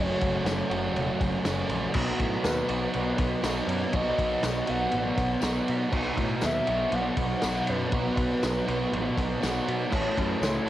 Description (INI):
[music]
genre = rock, shoegaze and dream pop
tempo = 120 BPM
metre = 4/4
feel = straight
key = unclear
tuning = A4 = 439 Hz
[part]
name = hollow clarinet-like synth lead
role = melody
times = 0.0-10.7 s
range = B4 to F#5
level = -32 LUFS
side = equal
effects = chorus, cassette tape, tape echo
[part]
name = crunchy overdriven guitar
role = riff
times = 0.0-10.7 s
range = F#2 to A4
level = -29 LUFS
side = right 4 dB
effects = reverse reverb, cassette tape
[part]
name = thick fuzz guitar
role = riff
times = 0.0-10.7 s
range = F#2 to B3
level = -33 LUFS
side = left 9 dB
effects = distortion, wide subtle chorus, cassette tape
[part]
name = growling picked electric bass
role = bass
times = 0.0-10.7 s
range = E1 to B2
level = -33 LUFS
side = equal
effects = overdrive
[part]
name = loose indie drum kit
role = drums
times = 0.2-10.5 s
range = crash cymbal, kick drum, ride cymbal, snare drum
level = -30 LUFS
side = equal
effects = cassette tape
[part]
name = tambourine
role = percussion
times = 0.5-10.5 s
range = none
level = -44 LUFS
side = left 9 dB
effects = none
[part]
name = picked twelve-string acoustic guitar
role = arpeggios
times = 9.9-10.7 s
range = F#4 to C#5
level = -34 LUFS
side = left 3 dB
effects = ensemble chorus, cassette tape, tape echo
[part]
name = overdriven electric guitar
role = riff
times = 9.9-10.7 s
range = A2 to A3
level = -36 LUFS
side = left 1 dB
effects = none
[sound]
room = light reverb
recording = home recording on cassette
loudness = -24 LUFS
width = side -13 dB against mid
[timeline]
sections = 0.0-10.7 A section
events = none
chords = 0.0 F#m; 2.0 B; 9.9 A6